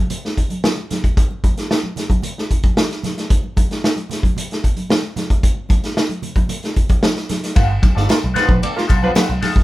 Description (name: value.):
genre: funk.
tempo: 113 BPM.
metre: 4/4.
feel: straight.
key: G mixolydian.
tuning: A4 = 445 Hz.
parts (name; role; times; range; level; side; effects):
vintage drum kit; drums; 0.1-9.6 s; hi-hat, kick drum, ride cymbal, snare drum; -16 LUFS; equal; none.
congas; percussion; 0.1-9.5 s; none; -26 LUFS; right 1 dB; none.
clean electric guitar; accompaniment; 7.6-9.6 s; B3 to B4; -22 LUFS; left 4 dB; wah.
vintage muted picked electric bass; bass; 7.6-9.6 s; F1 to B1; -20 LUFS; right 1 dB; none.
tambourine; percussion; 7.6-9.5 s; none; -38 LUFS; left 3 dB; none.
warm horn section; second line; 8.0-9.1 s; F3 to D5; -22 LUFS; right 1 dB; none.
room: light reverb.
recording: band playing live in one room.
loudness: -15 LUFS.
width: side -17 dB against mid.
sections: 0.0-7.6 A section; 7.6-9.6 B section.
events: none.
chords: 0.0 N.C.; 7.6 G9.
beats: 0.10 0.64 | 1.17 1.70 2.24 2.77 | 3.30 3.84 4.37 4.90 | 5.44 5.97 6.50 7.03 | 7.56 8.10 8.63 9.16.